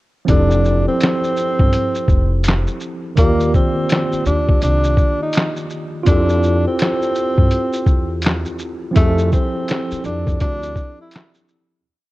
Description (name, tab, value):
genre	lo-fi hip hop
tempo	83 BPM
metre	4/4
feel	swing 64% on 16ths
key	F major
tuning	A4 = 441 Hz
part	tine electric piano	accompaniment	0.2-11.9 s	Eb3 to D5	-22 LUFS	equal	overdrive, fast stereo tremolo, low-pass filter
part	breathy tenor saxophone	melody	0.3-11.3 s	A3 to E4	-21 LUFS	right 1 dB	low-pass filter
part	upright bass	bass	0.3-10.8 s	F1 to G2	-19 LUFS	equal	none
part	lo-fi sampler-style drum kit	drums	0.3-11.7 s	handclaps, hi-hat, kick drum, shaker, snare drum	-17 LUFS	equal	vintage 12-bit sampler grit
part	finger snap	percussion	1.0-11.3 s	none	-36 LUFS	left 1 dB	none
room	light reverb, small room ambience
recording	worn, warbling old tape, cassette tape, warbly pitch drift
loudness	-14 LUFS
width	side -18 dB against mid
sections	0.3-11.8 A section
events	fade-out 9.0-11.8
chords	0.3 Fmaj9; 3.2 Ebmaj9; 6.1 Fmaj9